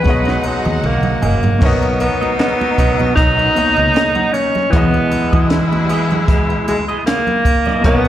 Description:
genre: lush 1970s-style soul.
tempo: 77 BPM.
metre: 4/4.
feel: swing 54% on 16ths.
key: B major.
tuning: A4 = 440 Hz.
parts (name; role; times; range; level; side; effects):
clear alto saxophone; melody; 0.0-8.1 s; G3 to B4; -16 LUFS; equal; none.
warm studio violin section; second line; 0.0-1.6 s; F#4 to F#5; -26 LUFS; right 1 dB; slapback echo.
warm grand piano; accompaniment; 0.0-8.1 s; B2 to D#5; -22 LUFS; left 2 dB; slapback echo.
semi-hollow electric guitar; riff; 0.0-8.0 s; B3 to F#5; -26 LUFS; right 4 dB; wah, analog chorus, slapback echo.
fretless electric bass; bass; 0.0-8.1 s; F#1 to E3; -18 LUFS; equal; none.
congas; percussion; 0.0-7.8 s; none; -26 LUFS; right 3 dB; none.
triangle; percussion; 0.0-8.1 s; none; -39 LUFS; left 4 dB; none.
clear horn section; stabs; 0.1-8.1 s; B2 to A#4; -24 LUFS; left 2 dB; slapback echo.
compact cocktail drum kit; drums; 0.1-8.0 s; crash cymbal, hi-hat, kick drum, snare drum, toms; -16 LUFS; equal; none.
room: little or no reverb.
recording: live gig heard through the venue's PA, recital hall reverb.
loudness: -12 LUFS.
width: side -12 dB against mid.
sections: 0.0-1.6 A section; 1.6-8.1 A section.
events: drum fill 0.1-1.6.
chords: 0.1 B69; 1.6 Bmaj9; 4.7 Emaj7.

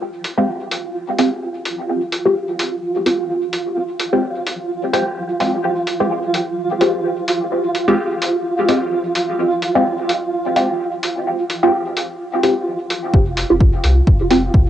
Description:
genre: dub techno.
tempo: 128 BPM.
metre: 4/4.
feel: swing 56% on 16ths.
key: F minor.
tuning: A4 = 439 Hz.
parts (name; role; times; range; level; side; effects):
flickering grainy texture; texture; 0.0-14.7 s; F4; -21 LUFS; right 2 dB; built-in reverb, sidechain pumping, cassette tape.
electronic hi-hat; drums; 0.2-14.4 s; none; -23 LUFS; equal; cassette tape.
filtered dub chord stab; stabs; 0.4-14.4 s; Ab3 to G4; -18 LUFS; equal; phaser, sidechain pumping, cassette tape, dub echo.
soft dub sub bass; bass; 13.1-14.6 s; F1 to C2; -18 LUFS; equal; sidechain pumping.
electronic kick drum; drums; 13.1-14.6 s; none; -13 LUFS; equal; cassette tape.
room: wet spring reverb, RT60 1.7 s.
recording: home recording on cassette, nothing above 10.4 kHz.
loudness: -16 LUFS.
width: side -11 dB against mid.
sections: 0.0-13.1 A section; 13.1-14.7 B section.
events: none.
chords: 0.0 N.C.; 13.1 F5.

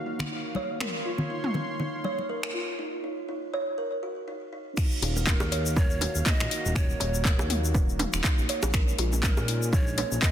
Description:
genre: afro house.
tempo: 121 BPM.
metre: 4/4.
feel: swing 56% on 16ths.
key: Eb dorian.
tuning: A4 = 440 Hz.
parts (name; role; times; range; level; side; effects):
warm analog pad; sustained chords; 0.0-10.3 s; Eb3 to C6; -38 LUFS; equal; chorus, sidechain pumping.
kalimba; arpeggios; 0.1-10.3 s; Eb4 to Db5; -34 LUFS; right 1 dB; vintage 12-bit sampler grit, sidechain pumping, low-pass filter, digital delay.
house drum kit; drums; 0.2-10.3 s; crash cymbal, finger snaps, handclaps, hi-hat, toms; -30 LUFS; left 1 dB; overdrive, small room reverb.
congas; percussion; 0.2-2.3 s; none; -33 LUFS; left 2 dB; none.
electronic kick drum; drums; 4.8-10.3 s; none; -25 LUFS; equal; overdrive, small room reverb.
egg shaker; percussion; 4.8-10.3 s; none; -37 LUFS; left 4 dB; none.
smooth gliding synth bass; bass; 5.0-10.2 s; Eb1 to Bb2; -29 LUFS; equal; sidechain pumping.
bongos; percussion; 5.0-10.1 s; none; -35 LUFS; right 3 dB; none.
breathy bright large pan pipes; melody; 5.3-10.3 s; Bb4 to Eb5; -36 LUFS; right 1 dB; digital delay.
room: light reverb, small room ambience.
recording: dense, heavily limited modern master, high-pass filter.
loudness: -25 LUFS.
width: side -10 dB against mid.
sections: 0.0-4.8 A section; 4.8-10.3 B section.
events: build-up 0.0-4.8; filter sweep 0.0-4.8; break 2.8-4.8; drop 4.8-10.3.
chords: 0.0 Ebm; 0.8 Bbmadd9; 2.8 N.C.; 4.8 Ebm7; 8.7 Bbm7.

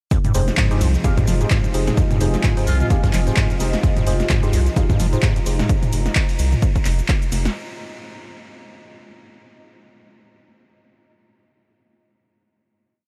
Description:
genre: acid house.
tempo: 129 BPM.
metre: 4/4.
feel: swing 57% on 16ths.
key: F minor.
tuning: A4 = 440 Hz.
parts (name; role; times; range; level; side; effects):
lush unison pad; sustained chords; 0.1-5.7 s; C3 to Eb4; -32 LUFS; equal; chorus, sidechain pumping.
overdriven acid bass; riff; 0.1-5.4 s; F2 to F3; -26 LUFS; equal; tape echo.
electronic kick drum; drums; 0.1-7.2 s; none; -22 LUFS; equal; overdrive.
jazz brush drum kit; drums; 0.1-5.6 s; none; barely audible; none; none.
punchy analog drum machine; drums; 0.1-7.5 s; handclaps, hi-hat, shaker, snare drum, toms; -28 LUFS; equal; overdrive.
warbly tape-like pad; texture; 1.0-7.6 s; F4 to Bb5; -34 LUFS; equal; chorus, built-in reverb, phaser, sidechain pumping.
deep mellow chord stab; stabs; 0.3-5.6 s; Eb4 to F5; -32 LUFS; equal; chorus, cassette tape, tape echo.
round analog bass; bass; 0.3-7.5 s; F1 to C2; -22 LUFS; equal; sidechain pumping.
trumpet with metal mute; melody; 2.7-2.9 s; F4; -38 LUFS; equal; tape echo.
room: light reverb, digital ambience.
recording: none.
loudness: -19 LUFS.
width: mono.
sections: 0.1-7.6 drop.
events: drop 0.1-7.6.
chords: 0.1 Fm7.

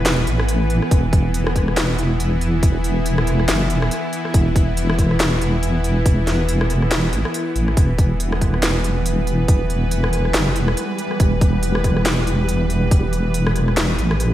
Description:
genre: deep dubstep.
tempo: 140 BPM.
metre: 4/4.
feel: swing 58% on 16ths, half-time.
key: E minor.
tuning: A4 = 440 Hz.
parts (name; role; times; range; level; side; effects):
bowed-like drone; sustained chords; 0.0-14.3 s; E3 to B4; -23 LUFS; equal; built-in reverb.
deep soft wobble bass; bass; 0.0-14.3 s; E1 to A1; -19 LUFS; equal; chorus.
garage drum kit; drums; 0.1-14.3 s; handclaps, hi-hat, rim click, snare drum; -23 LUFS; equal; gated reverb.
electronic kick drum; drums; 0.9-13.0 s; none; -16 LUFS; equal; none.
flickering grainy texture; texture; 8.2-14.3 s; G3; -28 LUFS; right 1 dB; built-in reverb, ensemble chorus.
room: light reverb, digital ambience.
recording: bright 1980s-style digital production, vinyl crackle.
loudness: -16 LUFS.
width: side -13 dB against mid.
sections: 0.0-14.3 A section.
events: none.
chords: 0.0 E5.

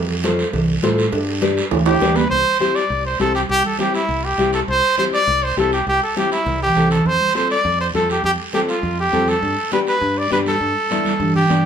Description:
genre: latin, cumbia.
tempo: 202 BPM.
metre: 4/4.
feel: straight.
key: C major.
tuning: A4 = 439 Hz.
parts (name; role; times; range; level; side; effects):
modern bright fingered electric bass; bass; 0.0-11.7 s; C2 to A2; -24 LUFS; equal; none.
nylon-string guitar; accompaniment; 0.2-11.7 s; B3 to C5; -22 LUFS; left 4 dB; none.
congas; percussion; 0.2-11.6 s; none; -24 LUFS; right 2 dB; none.
cowbell and timbales; percussion; 0.2-2.2 s; none; -23 LUFS; right 9 dB; none.
guiro; percussion; 0.2-11.6 s; none; -30 LUFS; right 4 dB; none.
clear trumpet; melody; 1.9-11.7 s; E4 to D5; -18 LUFS; right 1 dB; none.
room: moderate large studio reverb, RT60 0.8 s.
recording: band playing live in one room.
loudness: -16 LUFS.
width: side -8 dB against mid.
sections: 0.0-2.3 A section; 2.3-11.7 B section.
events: drum fill 1.7-2.3, 6.5-7.1, 10.9-11.7.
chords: 0.0 F; 1.1 G; 2.3 C; 7.1 F; 9.4 Gadd9.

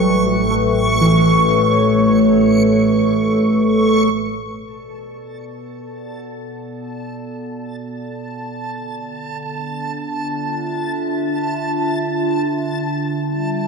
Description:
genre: ambient.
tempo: free time.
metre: none.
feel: none.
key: B minor.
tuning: A4 = 440 Hz.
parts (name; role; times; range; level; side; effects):
warbly tape-like pad; sustained chords; 0.0-13.7 s; B2 to G5; -18 LUFS; equal; chorus, built-in reverb.
soft round pluck; arpeggios; 0.0-4.0 s; E3 to A4; -19 LUFS; right 2 dB; chorus, tape echo.
rich studio double bass section; bass; 0.0-4.1 s; A1; -24 LUFS; equal; none.
backwards swelling texture; texture; 0.0-13.7 s; A5 to C#6; -24 LUFS; right 1 dB; built-in reverb.
room: wet concert hall reverb, RT60 2.0 s.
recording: dark, warm production.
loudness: -14 LUFS.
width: side -5 dB against mid.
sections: 0.0-4.1 A section; 4.1-13.7 B section.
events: fade-in on ambient pad 4.1-13.7; fade-in on synth texture 4.1-13.7.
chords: 0.0 Aadd9; 4.1 Bm7; 8.7 Dmadd9.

